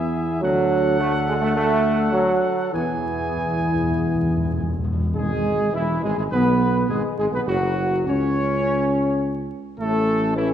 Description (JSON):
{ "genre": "classical", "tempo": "103 BPM", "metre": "4/4", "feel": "uneven beats", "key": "E major", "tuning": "A4 = 440 Hz", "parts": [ { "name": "mellow trumpet section", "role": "melody", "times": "0.0-10.5 s", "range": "E4 to G#5", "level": "-26 LUFS", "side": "equal", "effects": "none" }, { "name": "bright trombone section", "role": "sustained chords", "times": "0.0-10.5 s", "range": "E3 to C#4", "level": "-23 LUFS", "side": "right 2 dB", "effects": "none" }, { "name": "mellow French horn section", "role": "sustained chords", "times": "0.0-10.5 s", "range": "E3 to A4", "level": "-27 LUFS", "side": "left 3 dB", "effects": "none" }, { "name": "dark tuba", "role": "bass", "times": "0.0-10.5 s", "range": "E1 to E2", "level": "-25 LUFS", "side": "right 1 dB", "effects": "none" }, { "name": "timpani", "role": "percussion", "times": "2.7-6.0 s", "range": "E2", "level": "-26 LUFS", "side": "left 1 dB", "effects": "none" } ], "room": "wet scoring stage reverb, RT60 1.5 s", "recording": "minimal, uncompressed stereo recording, vinyl crackle", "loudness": "-19 LUFS", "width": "side -10 dB against mid", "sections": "0.0-5.2 A section; 5.2-10.5 B section", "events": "timpani fill 2.7-5.2", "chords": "0.4 D; 2.7 E; 7.5 F#5; 9.8 A", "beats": "| 0.43 1.00 1.56 2.15 | 2.74 3.35 3.95 4.55 | 5.15 5.74 6.32 6.89 | 7.47 8.07 8.64 9.21 | 9.79 10.37" }